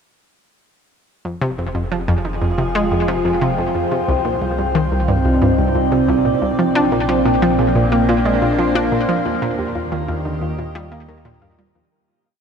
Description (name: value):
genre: ambient, sequencer-driven space music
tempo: 90 BPM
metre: 4/4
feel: straight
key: F dorian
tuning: A4 = 440 Hz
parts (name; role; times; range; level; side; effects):
- evolving wavetable pad; sustained chords; 2.0-11.9 s; Bb2 to Bb5; -18 LUFS; equal; chorus, built-in reverb, shimmer reverb
- analog pluck; riff; 1.2-11.8 s; C2 to D4; -19 LUFS; equal; chorus, tape echo, shimmer reverb
- warm sub bass; bass; 1.2-11.9 s; F1 to Eb2; -26 LUFS; left 1 dB; none
- soft round pluck; arpeggios; 1.3-11.9 s; F3 to F5; -29 LUFS; left 2 dB; chorus, auto-pan, tape echo, shimmer reverb
room: wet huge ambient reverb, RT60 8.1 s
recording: cassette tape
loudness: -15 LUFS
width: side -6 dB against mid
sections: 1.3-11.9 A section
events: fade-in on synth arpeggio sound 1.3-11.9; fade-out 8.4-11.9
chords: 1.3 Fmadd9; 3.9 Cmadd9; 6.6 Bbadd9; 9.3 Eb